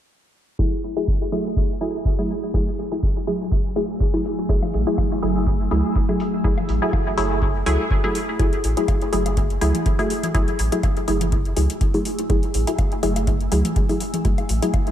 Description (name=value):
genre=dub techno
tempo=123 BPM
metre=4/4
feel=swing 54% on 16ths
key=F# minor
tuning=A4 = 438 Hz
part: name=deep dark ambient pad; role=sustained chords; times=2.9-14.9 s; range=F#3 to E6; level=-30 LUFS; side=equal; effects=chorus, built-in reverb, sidechain pumping
part: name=filtered dub chord stab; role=stabs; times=0.6-14.9 s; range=F#3 to G#4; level=-23 LUFS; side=equal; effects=chorus, phaser, sidechain pumping, dub echo
part: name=electronic kick drum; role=drums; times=0.6-14.8 s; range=none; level=-22 LUFS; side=equal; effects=none
part: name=electronic hi-hat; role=drums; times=0.8-14.9 s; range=none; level=-33 LUFS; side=left 2 dB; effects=overdrive
part: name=soft dub sub bass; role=bass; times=4.5-14.6 s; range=F#1 to C#2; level=-23 LUFS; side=equal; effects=sidechain pumping
part: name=electronic toms and woodblock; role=percussion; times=4.6-14.8 s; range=none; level=-32 LUFS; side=left 4 dB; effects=sidechain pumping on toms, sidechain pumping on perc, dub echo
room=light reverb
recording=low-pass filter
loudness=-19 LUFS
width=side -11 dB against mid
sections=0.6-8.4 A section; 8.4-14.9 B section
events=filter sweep on synth stab 0.6-8.4, 8.4-14.9; filter sweep 0.6-8.4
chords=0.6 F#m9